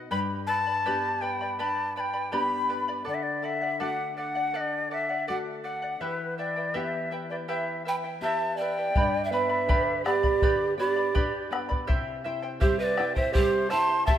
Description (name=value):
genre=andean folk, Andean ensemble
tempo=82 BPM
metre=4/4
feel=straight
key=unclear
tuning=A4 = 443 Hz
part: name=charango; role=accompaniment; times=0.0-14.2 s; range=E4 to B5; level=-32 LUFS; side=right 1 dB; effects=none
part: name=nylon-string guitar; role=accompaniment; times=0.0-14.2 s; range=G2 to G4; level=-37 LUFS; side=left 4 dB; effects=none
part: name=breathy bright large quena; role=melody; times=0.1-14.1 s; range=B4 to C6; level=-29 LUFS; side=left 2 dB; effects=none
part: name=breathy mellow pan flute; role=second line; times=7.9-14.2 s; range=G4 to A5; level=-27 LUFS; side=right 4 dB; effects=none
part: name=bombo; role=percussion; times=9.0-14.2 s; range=none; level=-26 LUFS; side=left 1 dB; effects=none
room=moderate lush hall reverb, RT60 2.5 s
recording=rough home demo mix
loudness=-25 LUFS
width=side -10 dB against mid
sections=0.0-8.9 A section; 8.9-14.2 B section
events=none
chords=0.1 G; 3.1 D; 6.0 Em; 8.9 G; 11.9 C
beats=| 0.11 0.85 1.59 2.33 | 3.06 3.80 4.54 5.27 | 6.01 6.74 7.48 8.21 | 8.95 9.68 10.41 11.14 | 11.88 12.61 13.34 14.07